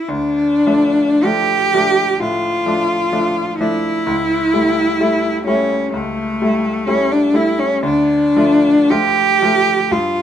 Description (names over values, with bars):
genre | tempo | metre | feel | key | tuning
classical, romantic duo for cello and grand piano | 49-66 BPM | 4/4 | rubato | D minor | A4 = 439 Hz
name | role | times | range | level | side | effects
rich cello | melody | 0.0-10.2 s | A3 to G4 | -14 LUFS | equal | none
bright grand piano | accompaniment | 0.0-10.2 s | C#2 to F4 | -20 LUFS | equal | none
room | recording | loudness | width
moderate studio reverb, RT60 0.8 s | minimal, uncompressed stereo recording | -13 LUFS | side -9 dB against mid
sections
0.1-10.2 A section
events
none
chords
0.1 Dm; 4.1 A7/C#; 7.8 Dm